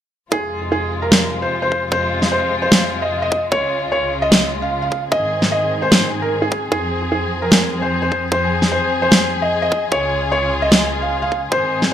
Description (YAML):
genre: heavy wobble dubstep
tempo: 150 BPM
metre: 4/4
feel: half-time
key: F minor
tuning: A4 = 440 Hz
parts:
  - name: felt-muted upright piano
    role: melody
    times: 0.3-11.8 s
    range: Ab4 to F5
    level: -19 LUFS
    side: equal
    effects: digital delay
  - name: muted studio string section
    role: sustained chords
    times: 0.3-11.9 s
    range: Db2 to Ab4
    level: -21 LUFS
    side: left 1 dB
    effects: sidechain pumping
  - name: electronic kick drum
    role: drums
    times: 0.3-11.6 s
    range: none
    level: -22 LUFS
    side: equal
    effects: high-pass filter on kick, small room ambience
  - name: electronic snare drum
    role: drums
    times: 1.1-11.9 s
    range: none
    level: -14 LUFS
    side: equal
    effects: small room ambience
room: moderate digital room reverb, RT60 1.1 s, small room ambience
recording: none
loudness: -15 LUFS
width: side -10 dB against mid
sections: 0.3-11.9 A section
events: none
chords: 0.3 Fm; 3.5 Db; 5.1 Ab; 6.7 Fm; 9.9 Db